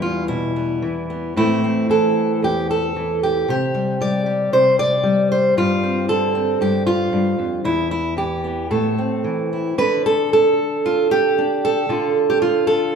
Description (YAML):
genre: folk, solo fingerstyle acoustic guitar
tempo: 114 BPM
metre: 4/4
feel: rubato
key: unclear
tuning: A4 = 440 Hz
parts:
  - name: fingerpicked steel-string acoustic guitar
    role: solo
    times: 0.0-13.0 s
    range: E2 to D5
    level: -16 LUFS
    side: equal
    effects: none
room: wet large studio reverb, RT60 1.3 s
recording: band playing live in one room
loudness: -16 LUFS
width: side -6 dB against mid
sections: 0.0-9.8 A section; 9.8-13.0 B section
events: none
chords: 0.0 Em; 1.4 Am; 3.5 Csus2; 5.6 G7sus4; 7.6 Em; 8.7 Amadd9; 9.8 Dm